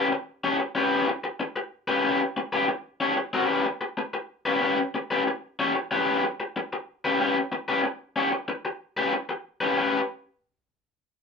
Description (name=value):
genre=funk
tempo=93 BPM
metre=4/4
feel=straight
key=A mixolydian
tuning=A4 = 440 Hz
part: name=raw garage guitar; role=accompaniment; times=0.0-10.0 s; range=C#4 to C#5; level=-24 LUFS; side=left 2 dB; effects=overdrive
room=moderate studio reverb, RT60 0.5 s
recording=none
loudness=-24 LUFS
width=side -5 dB against mid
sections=0.0-9.8 A section; 9.8-11.2 B section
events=none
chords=0.0 A9 (rootless)